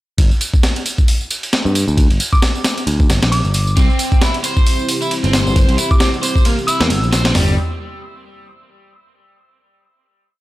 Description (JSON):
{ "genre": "breakbeat, breaks", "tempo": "134 BPM", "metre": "4/4", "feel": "swing 57% on 16ths", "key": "G dorian", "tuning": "A4 = 440 Hz", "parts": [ { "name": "picked electric bass", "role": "bass", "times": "0.2-7.6 s", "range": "G1 to G2", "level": "-16 LUFS", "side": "equal", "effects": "none" }, { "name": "breakbeat sampler-style drum kit", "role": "drums", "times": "0.2-7.5 s", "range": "hi-hat, kick drum, ride cymbal, snare drum, toms", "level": "-15 LUFS", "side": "equal", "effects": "none" }, { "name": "tambourine", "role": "drums", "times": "0.2-7.3 s", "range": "none", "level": "-26 LUFS", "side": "right 1 dB", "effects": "none" }, { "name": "soft synth bell", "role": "melody", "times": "2.3-7.1 s", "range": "D6 to E6", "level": "-25 LUFS", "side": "equal", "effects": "chorus, telephone sound, tape echo" }, { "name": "dark analog pad", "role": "sustained chords", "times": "4.3-7.6 s", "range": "C4 to G4", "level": "-24 LUFS", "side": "equal", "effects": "chorus, phaser, sidechain pumping" }, { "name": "crunchy overdriven guitar", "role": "riff", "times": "3.8-7.6 s", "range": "G3 to C5", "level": "-22 LUFS", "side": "right 1 dB", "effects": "tape echo" } ], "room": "little or no reverb", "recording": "dry, gritty hardware recording, transformer saturation", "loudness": "-13 LUFS", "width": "side -17 dB against mid", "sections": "0.2-7.4 groove; 7.4-9.1 final chord", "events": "none", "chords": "0.2 G5; 3.8 C; 7.4 Gm" }